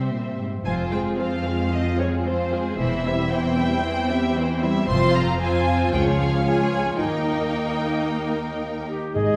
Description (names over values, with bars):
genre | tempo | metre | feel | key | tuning
classical, dramatic, fast romantic movement for symphony orchestra | 113 BPM | 4/4 | straight | unclear | A4 = 440 Hz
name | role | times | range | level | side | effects
rich symphonic violin section | melody | 0.0-9.4 s | C5 to C6 | -32 LUFS | equal | none
rich symphonic violin section | second line | 0.0-9.4 s | C4 to E5 | -29 LUFS | equal | none
warm symphonic viola section | accompaniment | 0.0-9.4 s | E3 to F4 | -28 LUFS | equal | none
rich symphonic cello section | bass | 0.0-9.4 s | Db2 to C3 | -28 LUFS | equal | none
rich symphonic double bass section | bass | 0.7-9.4 s | E1 to Eb2 | -31 LUFS | equal | none
warm clarinet | second line | 8.9-9.4 s | G4 to Ab4 | -27 LUFS | equal | none
dark French horn section | sustained chords | 9.1-9.4 s | Ab3 to Eb4 | -29 LUFS | equal | none
mellow hollow small flute group | second line | 9.2-9.4 s | Eb5 | -30 LUFS | equal | none
mellow bassoon | accompaniment | 9.2-9.4 s | Ab3 | -29 LUFS | equal | none
timpani | percussion | 9.2-9.4 s | Ab2 | -27 LUFS | equal | none
room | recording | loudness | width
wet scoring stage reverb, RT60 1.5 s | heard from further back in the room | -23 LUFS | mono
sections
0.0-9.2 A section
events
none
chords
0.0 C; 0.7 Fm; 2.8 C/E; 4.9 Fm; 5.9 Db; 7.0 Eb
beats
0.12 | 0.66 1.19 1.72 2.26 | 2.79 3.32 3.84 4.37 | 4.89 5.41 5.93 6.46 | 7.00 7.54 8.08 8.62 | 9.16